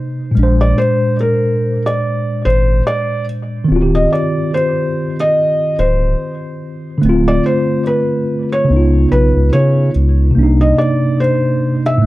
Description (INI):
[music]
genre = lo-fi hip hop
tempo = 72 BPM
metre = 4/4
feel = swing 58% on 16ths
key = unclear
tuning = A4 = 435 Hz
[part]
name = felt-muted upright piano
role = melody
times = 0.0-12.1 s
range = Bb4 to E5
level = -17 LUFS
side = equal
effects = plate reverb
[part]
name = tine electric piano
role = accompaniment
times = 0.0-12.1 s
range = A2 to C5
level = -15 LUFS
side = equal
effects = medium stereo tremolo, cassette tape
[part]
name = saturated sub bass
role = bass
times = 0.4-12.1 s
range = D1 to Db3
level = -13 LUFS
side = equal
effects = none
[sound]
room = moderate small room reverb, RT60 0.5 s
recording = dark, warm production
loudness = -12 LUFS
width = side -17 dB against mid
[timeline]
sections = 0.0-12.1 A section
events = none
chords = 0.4 Bb9; 3.7 Eb69; 7.0 Dm7; 8.7 Db9; 10.4 Cm9